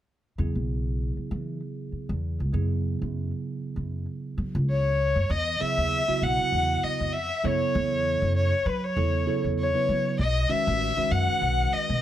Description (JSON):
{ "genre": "jazz", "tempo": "98 BPM", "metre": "4/4", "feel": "swing 55% on 16ths", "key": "unclear", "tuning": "A4 = 438 Hz", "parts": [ { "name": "bell-like tine electric piano", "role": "accompaniment", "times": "0.4-12.0 s", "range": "C#3 to B4", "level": "-30 LUFS", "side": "right 4 dB", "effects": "phaser" }, { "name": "upright bass", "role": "bass", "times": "0.4-12.0 s", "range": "A1 to F#3", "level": "-28 LUFS", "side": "equal", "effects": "none" }, { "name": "warm violin", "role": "melody", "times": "4.7-12.0 s", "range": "B4 to F#5", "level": "-27 LUFS", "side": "equal", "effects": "none" }, { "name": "breathy bright jazz flute", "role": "second line", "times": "4.7-12.0 s", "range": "B4 to F#5", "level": "-31 LUFS", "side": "left 7 dB", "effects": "none" } ], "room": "light reverb", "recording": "none", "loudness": "-24 LUFS", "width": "side -11 dB against mid", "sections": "0.4-5.3 A section; 5.3-12.0 B section", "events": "none", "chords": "0.4 Eadd9; 2.5 F#sus2; 5.3 Emaj9; 7.4 F#m7; 10.2 B9", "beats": "| 0.38 1.00 1.61 2.23 | 2.84 3.45 4.07 4.68 | 5.29 5.91 6.52 7.13 | 7.74 8.36 8.97 9.58 | 10.19 10.80 11.41" }